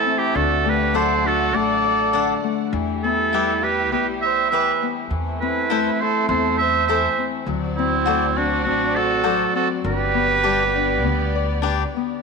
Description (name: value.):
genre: mexican folk, mariachi.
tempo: 101 BPM.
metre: 4/4.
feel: straight.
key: unclear.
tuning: A4 = 436 Hz.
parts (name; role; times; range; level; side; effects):
warm oboe; melody; 0.0-11.6 s; E4 to E5; -21 LUFS; right 2 dB; none.
bright trumpet; second line; 0.0-11.6 s; C4 to C5; -26 LUFS; right 13 dB; none.
muted chamber violin section; sustained chords; 0.0-12.2 s; G3 to F#5; -30 LUFS; equal; none.
Celtic harp; arpeggios; 0.0-12.2 s; D3 to E5; -25 LUFS; left 13 dB; none.
upright bass; bass; 0.4-11.8 s; G1 to E2; -27 LUFS; right 1 dB; none.
cavaquinho; accompaniment; 0.9-11.8 s; D4 to F#5; -26 LUFS; left 11 dB; none.
room: moderate plate reverb, RT60 2.4 s.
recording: 1960s-style stereo with parts hard left and right.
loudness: -18 LUFS.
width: side -4 dB against mid.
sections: 0.0-12.2 A section.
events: none.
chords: 0.3 D; 2.7 Em; 5.1 Am/E; 7.5 D7; 9.8 G.